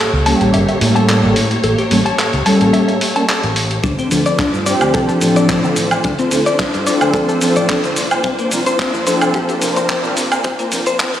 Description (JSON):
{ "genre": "nu-disco, nu disco", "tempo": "109 BPM", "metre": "4/4", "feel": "swing 54% on 16ths", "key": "unclear", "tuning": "A4 = 436 Hz", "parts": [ { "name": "dark symphonic string section", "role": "sustained chords", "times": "0.0-11.2 s", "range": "A3 to C#5", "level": "-21 LUFS", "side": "equal", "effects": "sidechain pumping" }, { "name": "direct-recorded clean electric guitar", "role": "riff", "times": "0.0-11.1 s", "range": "Bb3 to A5", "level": "-20 LUFS", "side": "left 3 dB", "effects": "analog chorus, low-pass filter, dub echo" }, { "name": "fingered electric bass with an envelope filter", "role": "bass", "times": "0.1-11.2 s", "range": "G1 to C3", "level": "-21 LUFS", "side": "equal", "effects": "none" }, { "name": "mellow synth brass", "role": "accompaniment", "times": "0.3-10.8 s", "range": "F3 to Bb4", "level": "-17 LUFS", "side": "equal", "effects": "chorus, cassette tape, sidechain pumping, dub echo" }, { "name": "dusty soul sampler-style drum kit", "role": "drums", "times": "0.3-11.2 s", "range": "handclaps, hi-hat, shaker, woodblock", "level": "-19 LUFS", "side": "right 1 dB", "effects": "none" }, { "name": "kick drum", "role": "drums", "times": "3.8-11.1 s", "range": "none", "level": "-23 LUFS", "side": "right 1 dB", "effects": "none" } ], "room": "wet lush hall reverb, RT60 2.0 s, small room ambience", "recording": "played on a big sound system in a bare room, stone room reverb, high-pass filter", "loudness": "-12 LUFS", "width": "side -11 dB against mid", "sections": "0.0-11.2 A section", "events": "build-up 0.0-11.2", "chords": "0.0 A7b9; 3.8 Dm7; 8.0 C9sus4", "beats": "0.54 1.09 | 1.64 2.19 2.74 3.29 | 3.84 4.39 4.94 5.49 | 6.04 6.59 7.14 7.69 | 8.24 8.79 9.35 9.90 | 10.45 11.00" }